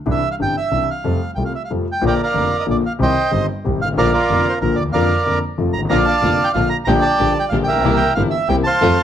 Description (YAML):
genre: tango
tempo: 186 BPM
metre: 3/4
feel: rubato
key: Bb major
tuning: A4 = 442 Hz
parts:
  - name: bandoneon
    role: melody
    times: 0.1-9.0 s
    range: F4 to Bb5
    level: -18 LUFS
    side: right 2 dB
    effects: plate reverb
  - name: warm concert grand piano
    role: accompaniment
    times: 0.1-9.0 s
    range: F1 to A4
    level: -20 LUFS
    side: left 4 dB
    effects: none
  - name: warm double bass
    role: bass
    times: 0.1-9.0 s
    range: F1 to F2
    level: -23 LUFS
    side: right 1 dB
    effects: none
  - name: dark chamber string section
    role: stabs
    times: 5.9-9.0 s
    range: A3 to G4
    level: -24 LUFS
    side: right 2 dB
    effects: none
room: moderate club reverb, RT60 0.6 s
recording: none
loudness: -15 LUFS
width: side -10 dB against mid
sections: 0.0-2.0 A section; 2.0-9.0 B section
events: none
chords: 0.1 Cadd9; 1.0 Fadd9; 2.0 Bb; 3.0 Cm; 4.0 Bb; 4.9 Bb/F; 5.6 F; 5.9 Bb; 6.9 Gm/Bb; 7.8 C7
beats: | 0.06 0.39 0.72 | 1.04 1.37 1.70 | 2.02 2.35 2.67 | 3.00 3.32 3.64 | 3.97 4.29 4.61 | 4.94 5.26 5.58 | 5.91 6.23 6.56 | 6.88 7.20 7.52 | 7.85 8.17 8.49 | 8.81